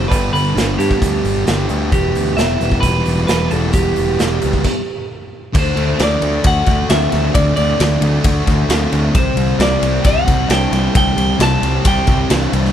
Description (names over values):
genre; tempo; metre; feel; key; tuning
indie rock; 133 BPM; 4/4; straight; unclear; A4 = 440 Hz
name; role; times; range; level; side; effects
clean electric guitar; melody; 0.0-12.3 s; G4 to A5; -20 LUFS; right 1 dB; tape echo
thick fuzz guitar; riff; 0.0-12.7 s; E2 to G4; -18 LUFS; left 1 dB; distortion
modern bright picked electric bass; bass; 0.0-12.7 s; E1 to G2; -19 LUFS; equal; none
raw garage drum kit; drums; 0.1-12.7 s; crash cymbal, hi-hat, kick drum, ride cymbal, snare drum; -18 LUFS; equal; none
room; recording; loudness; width
small room ambience; none; -13 LUFS; side -10 dB against mid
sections
0.0-5.5 A section; 5.5-12.7 B section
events
stop 4.6-5.5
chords
0.1 G; 1.9 Em; 5.5 D7; 9.2 Csus2